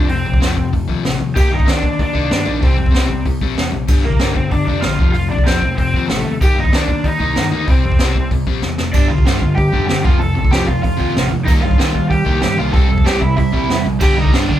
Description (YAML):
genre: punk rock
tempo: 190 BPM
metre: 4/4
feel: straight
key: unclear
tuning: A4 = 439 Hz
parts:
  - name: lead guitar through a small cranked amp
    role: melody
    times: 0.0-14.6 s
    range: A3 to A5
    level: -20 LUFS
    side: equal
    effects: overdrive
  - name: crunchy overdriven guitar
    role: riff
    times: 0.0-14.6 s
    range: F2 to Eb4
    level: -21 LUFS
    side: left 6 dB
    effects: none
  - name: picked electric bass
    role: bass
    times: 0.0-14.6 s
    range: F1 to G2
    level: -23 LUFS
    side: equal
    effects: none
  - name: jazz brush drum kit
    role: drums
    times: 0.1-14.6 s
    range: crash cymbal, hi-hat, kick drum, snare drum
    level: -16 LUFS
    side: equal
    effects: none
  - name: overdriven semi-hollow guitar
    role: riff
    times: 8.9-14.6 s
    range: F2 to C4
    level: -20 LUFS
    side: right 7 dB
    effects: none
  - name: heavy high-gain guitar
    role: riff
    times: 14.0-14.6 s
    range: G2 to G3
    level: -23 LUFS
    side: right 1 dB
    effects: distortion
room: light reverb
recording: band playing live in one room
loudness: -13 LUFS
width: side -12 dB against mid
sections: 0.0-14.6 A section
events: drum fill 8.6-8.9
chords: 0.0 F5; 1.4 Eb; 2.6 C; 3.9 Gm; 5.0 F; 6.4 Eb; 7.7 C; 8.9 G5; 10.0 F; 11.5 Eb; 12.7 C; 14.0 G5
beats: | 0.08 0.40 0.72 1.04 | 1.36 1.67 1.99 2.31 | 2.62 2.94 3.26 3.57 | 3.89 4.21 4.52 4.84 | 5.15 5.47 5.78 6.10 | 6.41 6.73 7.04 7.36 | 7.68 7.99 8.31 8.62 | 8.94 9.26 9.57 9.89 | 10.20 10.52 10.84 11.15 | 11.47 11.79 12.10 12.42 | 12.74 13.05 13.37 13.69 | 14.00 14.32